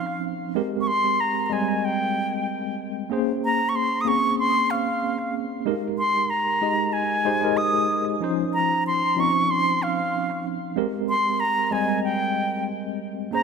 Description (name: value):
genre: chillout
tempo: 94 BPM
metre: 4/4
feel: straight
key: unclear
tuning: A4 = 439 Hz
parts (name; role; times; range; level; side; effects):
- bright reedy concert flute; melody; 0.0-13.4 s; F5 to Eb6; -23 LUFS; right 1 dB; digital delay
- tine electric piano; accompaniment; 0.0-13.4 s; F3 to Eb5; -25 LUFS; moving between left 4 dB and right 7 dB; medium stereo tremolo, auto-pan, digital delay
room: moderate lush hall reverb, RT60 2.2 s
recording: none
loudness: -21 LUFS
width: side -5 dB against mid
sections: 0.0-13.4 A section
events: none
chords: 0.0 Dbmaj9; 0.6 Abmaj9; 3.1 Bbm9; 5.7 Abmaj9; 8.2 Dbmaj9; 10.8 Abmaj9